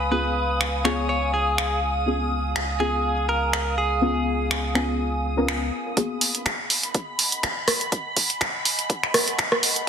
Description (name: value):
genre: deep house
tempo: 123 BPM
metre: 4/4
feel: swing 55% on 16ths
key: G# dorian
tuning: A4 = 442 Hz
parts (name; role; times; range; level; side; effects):
- direct-recorded clean electric guitar; melody; 0.0-5.7 s; G#4 to C#5; -27 LUFS; right 1 dB; digital delay
- warbly tape-like pad; sustained chords; 0.0-9.9 s; D#5 to D#6; -30 LUFS; equal; chorus, built-in reverb, sidechain pumping
- deep mellow chord stab; stabs; 0.0-9.9 s; A#3 to A#4; -27 LUFS; left 2 dB; chorus, sidechain pumping, tape echo
- warm sub bass; bass; 0.0-5.7 s; C#2; -28 LUFS; equal; sidechain pumping
- soft string machine; texture; 0.0-9.9 s; B5 to D#6; -33 LUFS; equal; ensemble chorus, sidechain pumping
- punchy analog drum machine; drums; 0.6-9.9 s; finger snaps, hi-hat, rim click; -23 LUFS; right 1 dB; soft clipping on snare
- electronic kick drum; drums; 6.0-9.5 s; none; -27 LUFS; equal; overdrive, high-pass filter on kick
room: wet echo chamber reverb, RT60 1.3 s, digital ambience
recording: dense, heavily limited modern master, high-pass filter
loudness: -21 LUFS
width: side -7 dB against mid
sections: 0.0-6.0 A section; 6.0-9.9 B section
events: filter sweep on synth stab 0.0-6.0; build-up 6.0-9.9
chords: 0.0 C#7; 6.0 G#m9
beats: | 0.12 0.60 1.09 1.58 | 2.07 2.56 3.04 3.53 | 4.02 4.51 5.00 5.48 | 5.97 6.46 6.95 7.43 | 7.92 8.41 8.90 9.38 | 9.87